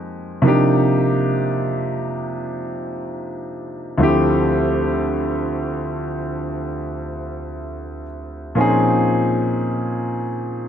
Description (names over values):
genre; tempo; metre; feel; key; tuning
R&B; free time; none; none; unclear; A4 = 440 Hz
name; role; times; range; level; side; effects
warm grand piano; solo; 0.0-10.7 s; D2 to Ab4; -18 LUFS; equal; none
room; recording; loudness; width
moderate plate reverb, RT60 3.5 s; dark, warm production; -18 LUFS; side -9 dB against mid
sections
0.0-10.7 A section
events
none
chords
0.4 Cm11; 4.0 Dm11; 8.6 Bbm11